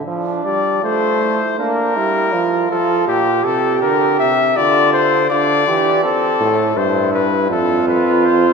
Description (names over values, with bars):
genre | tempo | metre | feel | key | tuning
classical, imitative canzona for brass ensemble | 81 BPM | 4/4 | straight | D minor | A4 = 436 Hz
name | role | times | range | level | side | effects
bright trombone | accompaniment | 0.0-6.0 s | Bb2 to Bb3 | -21 LUFS | right 3 dB | none
mellow flugelhorn | second line | 0.1-8.5 s | C4 to G4 | -20 LUFS | right 6 dB | none
warm trumpet | melody | 0.4-8.5 s | G4 to E5 | -17 LUFS | left 6 dB | none
clear bass trombone | bass | 6.4-8.5 s | F2 to A2 | -17 LUFS | right 1 dB | none
room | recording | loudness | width
wet church reverb, RT60 3.5 s | minimal, uncompressed stereo recording | -13 LUFS | side -5 dB against mid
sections
0.1-8.5 A section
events
none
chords
0.1 Dm/F; 1.6 Bb; 3.1 Gm/Bb; 4.6 Dm; 6.0 Am; 7.5 F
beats
| 0.06 0.83 1.59 2.33 | 3.08 3.82 4.57 5.30 | 6.04 6.77 7.51 8.25